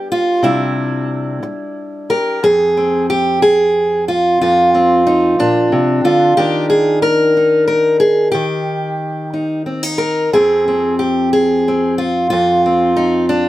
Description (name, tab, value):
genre	folk, solo fingerstyle acoustic guitar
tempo	61 BPM (dotted quarters)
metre	6/8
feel	rubato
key	F dorian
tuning	A4 = 441 Hz
part	fingerpicked steel-string acoustic guitar	solo	0.0-13.5 s	F2 to Bb4	-12 LUFS	equal	none
room	light reverb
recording	none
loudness	-12 LUFS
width	side -15 dB against mid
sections	0.0-2.4 A section; 2.4-13.5 B section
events	none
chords	0.4 Cadd9; 2.4 Fm; 6.4 Ebmaj7; 10.3 Fm